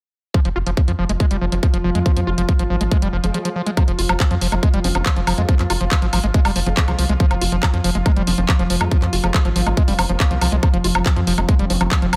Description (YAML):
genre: psychedelic trance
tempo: 140 BPM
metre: 4/4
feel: straight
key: F minor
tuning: A4 = 444 Hz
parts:
  - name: evolving wavetable pad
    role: sustained chords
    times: 1.1-12.2 s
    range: F3 to F4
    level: -28 LUFS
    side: equal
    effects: chorus, built-in reverb, sidechain pumping
  - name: screaming distorted acid line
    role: riff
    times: 0.3-12.2 s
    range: F3 to F4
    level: -26 LUFS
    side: equal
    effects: distortion, chorus, sidechain pumping, dub echo
  - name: electronic kick drum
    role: drums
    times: 0.3-12.0 s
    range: none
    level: -18 LUFS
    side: equal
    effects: none
  - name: garage drum kit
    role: drums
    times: 0.3-12.2 s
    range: handclaps, hi-hat, woodblock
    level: -26 LUFS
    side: equal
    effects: low-pass filter on hats, low-pass filter on perc, low-pass filter on snare
  - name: round analog bass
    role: bass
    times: 0.5-12.2 s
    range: F1 to F2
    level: -23 LUFS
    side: equal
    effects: none
  - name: vowel-sweep wobble bass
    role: second line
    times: 2.1-11.9 s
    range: Ab3 to C4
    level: -37 LUFS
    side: equal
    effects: none
room: little or no reverb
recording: none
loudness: -18 LUFS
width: mono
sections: 0.3-3.8 A section; 3.8-12.2 B section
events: break 3.3-3.8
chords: 0.3 Fm; 3.8 F5